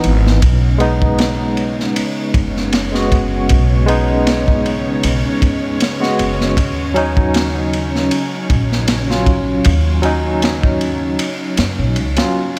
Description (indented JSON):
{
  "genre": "trip hop",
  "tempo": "78 BPM",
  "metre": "4/4",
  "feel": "swing 54% on 16ths",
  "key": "unclear",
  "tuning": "A4 = 440 Hz",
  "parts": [
    { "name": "barky tine electric piano", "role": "accompaniment", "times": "0.0-12.6 s", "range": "Fb3 to F#4", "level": "-21 LUFS", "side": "equal", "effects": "tremolo, tape echo" },
    { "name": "upright bass", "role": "bass", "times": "0.0-12.1 s", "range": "F#1 to Gb2", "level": "-20 LUFS", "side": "equal", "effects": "none" },
    { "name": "crunchy breakbeat drum kit", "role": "drums", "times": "0.0-12.6 s", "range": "kick drum, ride cymbal, snare drum", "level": "-21 LUFS", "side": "equal", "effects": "none" },
    { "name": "string machine, cellos", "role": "sustained chords", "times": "0.4-12.6 s", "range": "Db4 to Db5", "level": "-26 LUFS", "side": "equal", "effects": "ensemble chorus" }
  ],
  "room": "moderate huge ambient reverb, RT60 7.7 s",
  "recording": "dreamy mix soaked in reverb",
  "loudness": "-16 LUFS",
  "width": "mono",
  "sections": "0.0-12.6 A section",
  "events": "kick drops out 11.2-12.6",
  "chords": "0.4 B6; 6.6 Ebm7"
}